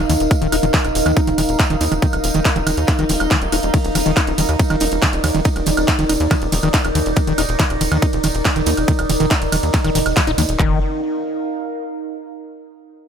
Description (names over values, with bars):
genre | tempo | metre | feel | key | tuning
psychedelic trance | 140 BPM | 4/4 | straight | unclear | A4 = 440 Hz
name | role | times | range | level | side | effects
overtone-sweeping drone | sustained chords | 0.0-10.6 s | Eb4 | -24 LUFS | right 1 dB | chorus, built-in reverb, sidechain pumping
tight sequencer bass | bass | 0.0-10.8 s | Eb1 to Eb2 | -22 LUFS | equal | none
warbly tape-like pad | texture | 0.0-12.3 s | Eb4 to F5 | -25 LUFS | equal | chorus, built-in reverb, sidechain pumping
overdriven acid bass | riff | 0.1-10.8 s | Eb3 to Eb4 | -22 LUFS | moving between left 8 dB and right 6 dB | distortion, auto-pan, sidechain pumping, dub echo
techno drum kit | drums | 0.1-10.6 s | handclaps, hi-hat, ride cymbal, woodblock | -23 LUFS | right 2 dB | overdrive
tambourine | percussion | 0.1-10.6 s | none | -30 LUFS | right 5 dB | none
big-room dance drum kit | drums | 0.3-10.7 s | handclaps, kick drum | -18 LUFS | equal | none
room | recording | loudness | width
digital ambience | none | -15 LUFS | side -8 dB against mid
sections
0.0-10.6 A section; 10.6-12.3 B section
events
drop 0.0-10.6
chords
0.0 Eb5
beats
| 0.31 0.74 1.17 1.59 | 2.02 2.45 2.88 3.31 | 3.74 4.17 4.59 5.02 | 5.45 5.88 6.31 6.74 | 7.17 7.59 8.02 8.45 | 8.88 9.31 9.74 10.17 | 10.60 11.02 11.45 11.88